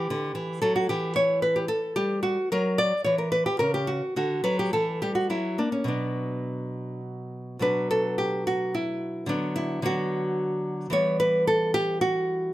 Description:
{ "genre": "classical, baroque-style dance for nylon-string guitar", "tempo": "109 BPM", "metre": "3/4", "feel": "rubato", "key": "B minor", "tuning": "A4 = 442 Hz", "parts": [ { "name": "nylon-string guitar", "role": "solo", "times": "0.0-12.5 s", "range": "B2 to D5", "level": "-24 LUFS", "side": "equal", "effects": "none" } ], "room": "light reverb", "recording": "close, detailed microphones", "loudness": "-24 LUFS", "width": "side -15 dB against mid", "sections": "0.0-7.6 A section; 7.6-12.5 B section", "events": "none", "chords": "0.0 Em; 2.5 F#5; 4.2 Dadd11; 4.7 Emadd11; 5.3 F#7; 5.9 Bm; 9.3 Bm/D; 10.9 Em" }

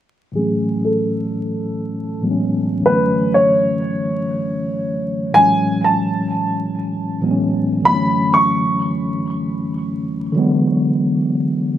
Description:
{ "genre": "hip hop", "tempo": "96 BPM", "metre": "4/4", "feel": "swing 57% on 16ths", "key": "F# minor", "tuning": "A4 = 440 Hz", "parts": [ { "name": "mellow tine electric piano", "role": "accompaniment", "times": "0.3-11.8 s", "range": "F#2 to C#4", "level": "-18 LUFS", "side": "equal", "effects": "medium stereo tremolo, cassette tape, high-pass filter, low-pass filter, plate reverb" }, { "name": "warm upright piano", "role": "melody", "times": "0.4-10.3 s", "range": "G#4 to C#6", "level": "-18 LUFS", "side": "equal", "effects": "high-pass filter, low-pass filter, plate reverb" } ], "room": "wet small room reverb, RT60 0.5 s", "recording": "vinyl crackle", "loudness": "-16 LUFS", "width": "side -11 dB against mid", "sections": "0.4-5.4 A section; 5.4-11.8 B section", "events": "filter sweep 0.4-5.4", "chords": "0.4 F#m9; 2.9 Dmaj7/F#; 5.4 F#m9; 7.9 Dmaj7/F#; 10.4 E9" }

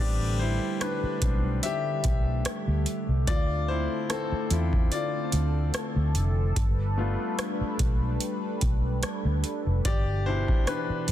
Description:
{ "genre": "contemporary R&B", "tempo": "73 BPM", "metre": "4/4", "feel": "swing 54% on 16ths", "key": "A minor", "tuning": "A4 = 439 Hz", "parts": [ { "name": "clear concert grand piano", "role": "accompaniment", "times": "0.0-11.1 s", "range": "B2 to E5", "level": "-31 LUFS", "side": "left 4 dB", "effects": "none" }, { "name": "warm analog pad", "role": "sustained chords", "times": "0.0-11.1 s", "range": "B2 to B4", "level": "-34 LUFS", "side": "right 1 dB", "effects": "chorus, sidechain pumping" }, { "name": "vintage muted fingered electric bass", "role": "bass", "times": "0.0-11.1 s", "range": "F1 to E2", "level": "-26 LUFS", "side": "equal", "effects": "none" }, { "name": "booming analog drum machine", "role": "drums", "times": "0.8-11.1 s", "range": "hi-hat, kick drum, rim click", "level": "-28 LUFS", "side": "equal", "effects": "none" } ], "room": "little or no reverb", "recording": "dense, heavily limited modern master", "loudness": "-24 LUFS", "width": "side -12 dB against mid", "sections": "0.0-11.1 A section", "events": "grand piano solo 0.0-11.1", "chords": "0.0 Am11; 3.3 Dm7; 6.6 G7; 9.8 G6" }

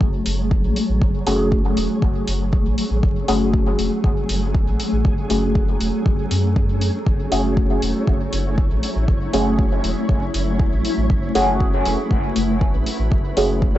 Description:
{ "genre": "dub techno", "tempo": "119 BPM", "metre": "4/4", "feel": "straight", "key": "F# minor", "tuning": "A4 = 441 Hz", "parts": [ { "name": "granular cloud pad", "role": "sustained chords", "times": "0.0-13.8 s", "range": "F#3 to G#4", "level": "-25 LUFS", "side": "left 1 dB", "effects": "built-in reverb, sidechain pumping" }, { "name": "deep mellow chord stab", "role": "stabs", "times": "0.0-13.7 s", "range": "A3 to G#4", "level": "-23 LUFS", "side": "equal", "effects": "chorus, phaser, cassette tape, dub echo" }, { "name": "soft dub sub bass", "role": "bass", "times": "0.0-13.8 s", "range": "E1 to F#2", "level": "-23 LUFS", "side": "equal", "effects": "transformer saturation, sidechain pumping" }, { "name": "electronic kick drum", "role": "drums", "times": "0.0-13.7 s", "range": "none", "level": "-19 LUFS", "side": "equal", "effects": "none" }, { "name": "flickering grainy texture", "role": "texture", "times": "0.0-13.8 s", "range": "C#4 to C#5", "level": "-33 LUFS", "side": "right 1 dB", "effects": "built-in reverb, sidechain pumping" }, { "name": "electronic hi-hat", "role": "drums", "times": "0.3-13.5 s", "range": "none", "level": "-30 LUFS", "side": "left 1 dB", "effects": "none" } ], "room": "digital ambience", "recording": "dry, gritty hardware recording, vinyl crackle, nothing above 7.9 kHz", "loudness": "-17 LUFS", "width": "side -14 dB against mid", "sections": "0.0-13.8 A section", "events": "none", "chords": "0.0 F#madd9" }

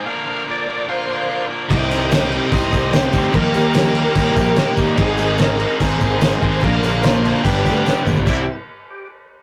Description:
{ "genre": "classic rock", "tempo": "146 BPM", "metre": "4/4", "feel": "straight", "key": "C minor", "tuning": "A4 = 440 Hz", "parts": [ { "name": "overdriven tonewheel organ", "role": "melody", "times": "0.0-8.5 s", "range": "G4 to G5", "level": "-27 LUFS", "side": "equal", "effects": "slow rotary speaker, chorus vibrato, analog delay" }, { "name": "tonewheel organ", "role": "sustained chords", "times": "0.0-8.6 s", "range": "D4 to E5", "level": "-36 LUFS", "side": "equal", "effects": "none" }, { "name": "distorted electric guitar", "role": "riff", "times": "0.0-8.4 s", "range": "G2 to Bb4", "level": "-28 LUFS", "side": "equal", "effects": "distortion" }, { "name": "octave-fuzz lead guitar", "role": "second line", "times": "0.9-8.4 s", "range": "Eb4 to Eb5", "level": "-28 LUFS", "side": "equal", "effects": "distortion" }, { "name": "picked steel-string acoustic guitar", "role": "accompaniment", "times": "1.7-8.4 s", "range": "G2 to B4", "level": "-29 LUFS", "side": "equal", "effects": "none" }, { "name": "crunchy overdriven guitar", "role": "riff", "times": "1.7-8.4 s", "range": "G2 to Bb4", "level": "-27 LUFS", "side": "equal", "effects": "none" }, { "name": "distorted electric guitar", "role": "riff", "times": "1.7-8.4 s", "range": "G2 to E4", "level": "-28 LUFS", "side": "equal", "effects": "none" }, { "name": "fuzz fingered electric bass", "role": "bass", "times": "1.7-8.5 s", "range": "G1 to Eb2", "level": "-23 LUFS", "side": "equal", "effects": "overdrive" }, { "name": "cloth-damped thuddy drum kit", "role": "drums", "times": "1.7-8.4 s", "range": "crash cymbal, kick drum, snare drum, toms", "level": "-21 LUFS", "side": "equal", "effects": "none" }, { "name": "tambourine", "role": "percussion", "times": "1.9-8.5 s", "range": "none", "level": "-44 LUFS", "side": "equal", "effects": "none" } ], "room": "moderate booth ambience, RT60 0.2 s", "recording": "rough rehearsal-room recording, tube saturation", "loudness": "-17 LUFS", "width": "mono", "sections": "0.0-8.3 A section; 8.3-9.4 B section", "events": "drum fill 7.8-8.3", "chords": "0.1 Bb; 1.7 Cm; 3.3 Ebadd9; 5.0 Ab; 6.6 Bb; 7.4 G; 8.3 C" }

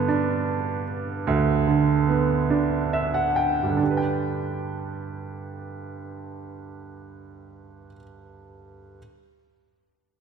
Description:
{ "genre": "pop", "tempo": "45-51 BPM (dotted quarters)", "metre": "6/8", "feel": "straight", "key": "G major", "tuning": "A4 = 439 Hz", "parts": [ { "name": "clear grand piano", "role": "accompaniment", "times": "0.0-9.0 s", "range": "D2 to G5", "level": "-23 LUFS", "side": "right 4 dB", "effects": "slapback echo" } ], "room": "wet scoring stage reverb, RT60 2.0 s", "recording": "big arena sound", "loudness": "-21 LUFS", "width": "side -6 dB against mid", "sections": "0.0-3.8 A section; 3.8-6.5 B section", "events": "slowing down 0.0-3.8; grand piano fill 2.5-3.8", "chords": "0.0 G" }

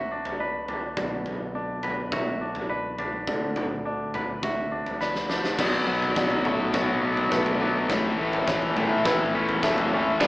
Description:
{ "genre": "post-rock", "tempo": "104 BPM", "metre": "4/4", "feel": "straight", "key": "unclear", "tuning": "A4 = 440 Hz", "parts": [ { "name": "felt-muted upright piano", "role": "arpeggios", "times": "0.0-10.3 s", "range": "A4 to E5", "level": "-34 LUFS", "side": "right 1 dB", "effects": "none" }, { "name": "twangy electric guitar", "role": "arpeggios", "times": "0.0-10.3 s", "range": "G2 to B4", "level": "-30 LUFS", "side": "equal", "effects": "none" }, { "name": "huge arena drum kit", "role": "drums", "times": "0.3-10.3 s", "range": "crash cymbal, kick drum, snare drum, toms", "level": "-29 LUFS", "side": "equal", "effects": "none" }, { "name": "growling fingered electric bass", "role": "bass", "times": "1.0-10.3 s", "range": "F#1 to E2", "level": "-36 LUFS", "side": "equal", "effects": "overdrive" }, { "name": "thick fuzz guitar", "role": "riff", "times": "5.6-10.3 s", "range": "G2 to B3", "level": "-24 LUFS", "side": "left 1 dB", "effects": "distortion" }, { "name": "tight distorted guitar", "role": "riff", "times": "10.2-10.3 s", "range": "G2 to G3", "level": "-23 LUFS", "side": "right 2 dB", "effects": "distortion" } ], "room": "moderate large studio reverb, RT60 0.8 s", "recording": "band playing live in one room, AM radio sound", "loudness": "-23 LUFS", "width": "side -20 dB against mid", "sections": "0.0-5.6 A section; 5.6-10.3 B section", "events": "drum fill 5.0-5.6, 5.6-10.3; build-up 5.6-10.3", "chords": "0.0 D6/F#; 1.0 Bm; 3.3 D6; 5.6 Bm7; 7.9 A" }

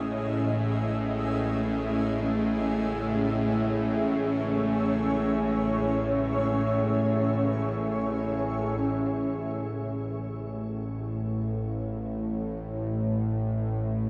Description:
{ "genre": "dark ambient drone", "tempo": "free time", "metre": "none", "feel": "none", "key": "unclear", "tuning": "A4 = 440 Hz", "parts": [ { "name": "granular cloud pad", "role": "sustained chords", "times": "0.0-8.8 s", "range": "C#4 to E5", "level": "-32 LUFS", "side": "equal", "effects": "built-in reverb, shimmer reverb" }, { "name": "bowed-like drone", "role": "drone", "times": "0.0-14.1 s", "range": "A1 to A2", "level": "-30 LUFS", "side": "equal", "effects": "built-in reverb" } ], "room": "wet huge ambient reverb, RT60 7.7 s", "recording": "none", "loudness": "-28 LUFS", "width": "mono", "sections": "0.0-8.8 A section; 8.8-14.1 B section", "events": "none", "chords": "0.0 C#m; 8.8 N.C." }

